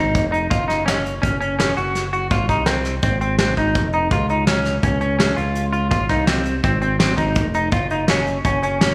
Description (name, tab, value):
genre	progressive instrumental, band music in an uneven meter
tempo	166 BPM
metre	5/4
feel	straight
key	unclear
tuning	A4 = 442 Hz
part	semi-hollow electric guitar	arpeggios	0.0-8.9 s	C4 to Gb4	-23 LUFS	equal	lush chorus
part	smooth synth bass	bass	0.0-8.9 s	F1 to Db2	-26 LUFS	equal	none
part	soft brush drum kit	drums	0.1-8.9 s	hi-hat, kick drum, snare drum	-24 LUFS	equal	none
room	moderate lush hall reverb, RT60 1.9 s, small room ambience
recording	big arena sound, studio ambience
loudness	-19 LUFS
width	mono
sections	0.0-8.9 A section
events	none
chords	0.0 Ab5; 0.5 Gb5; 2.3 Ab; 4.1 Db; 5.9 Ab; 7.7 Gb5